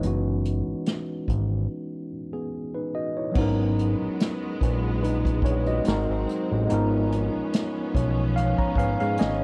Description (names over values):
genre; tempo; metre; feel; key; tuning
R&B, neo-soul; 72 BPM; 4/4; straight; G# minor; A4 = 440 Hz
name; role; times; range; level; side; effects
tine electric piano; accompaniment; 0.0-9.4 s; E3 to A#5; -30 LUFS; equal; none
fat analog bass; bass; 0.0-9.4 s; F#1 to G#2; -28 LUFS; equal; tube saturation
unplugged drum kit; drums; 0.0-9.4 s; crash cymbal, hi-hat, kick drum, snare drum; -29 LUFS; equal; none
rich studio string section; sustained chords; 3.4-9.4 s; E#3 to C#4; -34 LUFS; equal; none
room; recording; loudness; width
small room reverb; none; -25 LUFS; mono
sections
0.0-3.4 A section; 3.4-9.4 B section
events
break 1.7-3.4; tine electric piano fill 7.5-9.4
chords
0.0 F#9sus4; 3.4 G#m11; 5.9 G#9; 6.7 C#13/G#